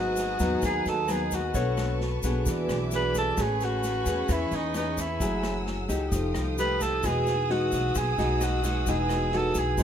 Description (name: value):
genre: bossa nova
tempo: 131 BPM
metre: 4/4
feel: straight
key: E major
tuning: A4 = 438 Hz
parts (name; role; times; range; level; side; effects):
- breathy alto saxophone; melody; 0.0-9.8 s; D#4 to B4; -28 LUFS; right 1 dB; none
- nylon-string guitar; accompaniment; 0.0-9.8 s; G#2 to C#5; -30 LUFS; left 2 dB; none
- vibraphone with soft mallets; accompaniment; 0.0-9.8 s; Eb4 to D#5; -35 LUFS; right 3 dB; none
- rich symphonic violin section; sustained chords; 0.0-9.8 s; G#4 to E6; -37 LUFS; equal; none
- upright bass; bass; 0.0-9.8 s; E1 to E2; -31 LUFS; equal; none
- swinging big-band drum kit; drums; 0.2-9.8 s; kick drum, rim click, snare drum; -36 LUFS; equal; none
- egg shaker; percussion; 0.2-9.8 s; none; -40 LUFS; left 5 dB; none
room: little or no reverb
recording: none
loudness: -24 LUFS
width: side -9 dB against mid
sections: 0.0-9.8 A section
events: none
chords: 0.0 G#m7; 1.5 Bm9; 2.5 E7; 3.4 Amaj9; 5.2 F#m9; 6.1 F9; 7.0 Emaj9